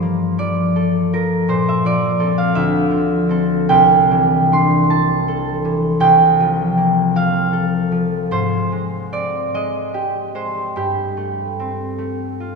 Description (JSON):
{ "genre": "classical, solo harp piece", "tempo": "48-56 BPM (dotted quarters)", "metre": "6/8", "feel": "rubato", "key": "G dorian", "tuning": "A4 = 441 Hz", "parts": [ { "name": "concert harp", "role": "solo", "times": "0.0-12.6 s", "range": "C2 to C6", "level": "-15 LUFS", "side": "equal", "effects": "none" } ], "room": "wet church reverb, RT60 3.4 s", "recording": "studio reverb", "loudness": "-15 LUFS", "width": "side -4 dB against mid", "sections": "0.0-12.6 A section", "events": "none", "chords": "0.0 Gm11; 1.5 Bbmaj9; 2.6 Dm9; 3.7 C69; 6.0 Gm9/C; 8.3 Abmaj7; 10.8 Gsus4" }